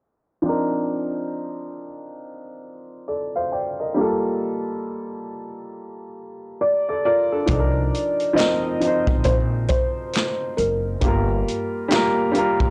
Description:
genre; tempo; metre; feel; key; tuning
lo-fi hip hop; 68 BPM; 4/4; swing 61% on 16ths; unclear; A4 = 437 Hz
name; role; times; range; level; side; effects
warm upright piano; accompaniment; 0.4-12.7 s; F3 to G5; -26 LUFS; equal; cassette tape, low-pass filter
felt-muted upright piano; melody; 6.6-12.3 s; Bb4 to Eb5; -26 LUFS; equal; low-pass filter
upright bass; bass; 7.5-12.7 s; F#1 to C2; -26 LUFS; equal; none
vintage drum kit; drums; 7.5-12.7 s; handclaps, hi-hat, kick drum, snare drum; -26 LUFS; equal; vintage 12-bit sampler grit
room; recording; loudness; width
light reverb; dry, gritty hardware recording, cassette tape, low-pass filter; -22 LUFS; mono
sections
0.4-7.5 A section; 7.5-12.7 B section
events
filter sweep 0.4-7.5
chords
0.4 Cm11; 4.0 Gm9; 7.5 Cm11; 11.0 Gm7

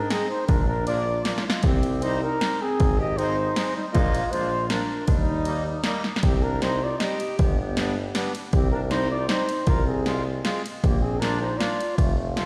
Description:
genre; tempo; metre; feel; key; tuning
alpine folk, alpine dance band; 157 BPM; 3/4; straight; Eb major, C minor from 6.2 s; A4 = 439 Hz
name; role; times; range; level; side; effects
mellow flugelhorn; melody; 0.0-12.5 s; Eb4 to Eb5; -31 LUFS; equal; tape echo
bright clarinet; second line; 0.0-12.5 s; G3 to G4; -34 LUFS; equal; none
warm tuba; bass; 0.0-12.5 s; F1 to Eb2; -30 LUFS; equal; none
accordion; accompaniment; 0.1-12.5 s; F3 to F4; -34 LUFS; equal; none
punchy analog drum machine; drums; 0.1-12.5 s; kick drum, ride cymbal, snare drum; -27 LUFS; equal; overdrive
room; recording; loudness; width
moderate echo chamber reverb, RT60 1.7 s, small room reverb; played on a big sound system in a bare room, stone room reverb; -24 LUFS; mono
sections
0.0-6.2 A section; 6.2-12.5 B section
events
drum fill 1.3-1.6, 6.0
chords
0.5 Bb; 1.6 Cm; 2.8 Ab; 3.9 Bb7sus4; 4.3 Bb; 5.1 Eb; 6.2 Cm; 7.4 G; 8.5 Cm; 9.7 Fm/C; 10.8 Bb

